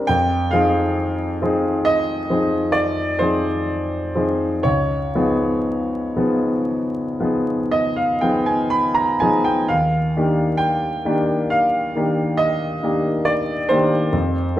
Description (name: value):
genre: classical, impressionist solo piano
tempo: 57-71 BPM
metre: 5/4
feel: rubato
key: Eb major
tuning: A4 = 444 Hz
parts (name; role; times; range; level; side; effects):
- clear concert grand piano; solo; 0.0-14.6 s; Db2 to Cb6; -17 LUFS; equal; none
room: wet recital hall reverb, RT60 1.4 s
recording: dark, warm production, vinyl crackle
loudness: -17 LUFS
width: side -13 dB against mid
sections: 0.0-14.6 A section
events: none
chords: 0.1 Fm7; 4.7 Db9; 9.7 Ebmaj9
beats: | 0.08 0.97 1.85 2.74 3.67 | 4.65 5.66 6.68 7.72 8.71 | 9.67 10.58 11.50 12.39 13.27 | 14.13